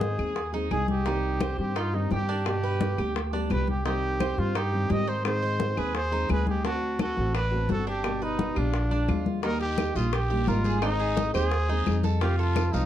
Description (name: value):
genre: latin, Cuban son and guajira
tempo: 172 BPM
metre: 4/4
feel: straight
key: C harmonic minor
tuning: A4 = 440 Hz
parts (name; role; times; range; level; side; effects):
- breathy trumpet; melody; 0.0-12.9 s; D4 to Eb5; -30 LUFS; right 1 dB; none
- nylon-string guitar; accompaniment; 0.0-12.9 s; B2 to Ab4; -33 LUFS; left 1 dB; none
- Cuban tres; arpeggios; 0.0-12.9 s; D4 to F5; -34 LUFS; right 6 dB; none
- upright bass; bass; 0.0-12.9 s; G1 to Ab2; -28 LUFS; equal; none
- bongos; percussion; 0.0-12.9 s; none; -36 LUFS; left 4 dB; none
- congas; percussion; 0.0-12.9 s; none; -31 LUFS; left 4 dB; none
- claves; percussion; 0.2-12.7 s; none; -41 LUFS; left 5 dB; none
- guiro; percussion; 9.4-12.9 s; none; -43 LUFS; left 6 dB; none
room: light reverb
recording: dark, warm production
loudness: -24 LUFS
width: side -11 dB against mid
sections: 0.0-9.4 A section; 9.4-12.9 B section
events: none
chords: 0.0 Ab; 1.1 Cm; 2.5 G; 3.9 Cm; 5.3 Ab; 6.6 D7; 8.0 G; 8.7 Bb7; 9.4 Eb; 10.8 Ab; 12.2 F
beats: 0.01 0.36 0.71 | 1.06 1.41 1.76 2.11 | 2.46 2.81 3.16 3.51 | 3.85 4.20 4.55 4.90 | 5.25 5.60 5.95 6.30 | 6.65 7.00 7.34 7.69 | 8.04 8.39 8.74 9.09 | 9.44 9.78 10.13 10.48 | 10.83 11.17 11.52 11.87 | 12.21 12.56